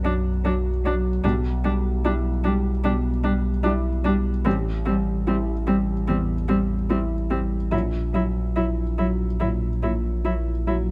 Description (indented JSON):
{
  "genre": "neoclassical piano and strings",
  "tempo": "74 BPM",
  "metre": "4/4",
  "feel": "rubato",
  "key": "E minor",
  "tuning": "A4 = 441 Hz",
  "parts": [
    { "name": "muted cello", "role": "second line", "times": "0.0-10.8 s", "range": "F#3 to G3", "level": "-31 LUFS", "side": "equal", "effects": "none" },
    { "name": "felt-muted upright piano", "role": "accompaniment", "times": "0.0-10.9 s", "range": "A1 to F#4", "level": "-28 LUFS", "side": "equal", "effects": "none" },
    { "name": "muted viola", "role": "accompaniment", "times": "0.0-10.8 s", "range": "C4 to E4", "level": "-31 LUFS", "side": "equal", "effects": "none" },
    { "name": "sub bass with octave", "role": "bass", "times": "0.0-10.9 s", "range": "A1 to B1", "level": "-27 LUFS", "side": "equal", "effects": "none" }
  ],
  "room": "little or no reverb",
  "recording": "close, detailed microphones",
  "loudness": "-23 LUFS",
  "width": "mono",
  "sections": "0.0-10.9 A section",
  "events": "none",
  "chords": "0.0 Bm; 1.2 Em7/B; 4.5 Am7; 7.7 F#7/A#",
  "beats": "0.44 | 1.24 2.04 2.84 3.65 | 4.46 5.27 6.08 6.90 | 7.73 8.57 9.41 10.25"
}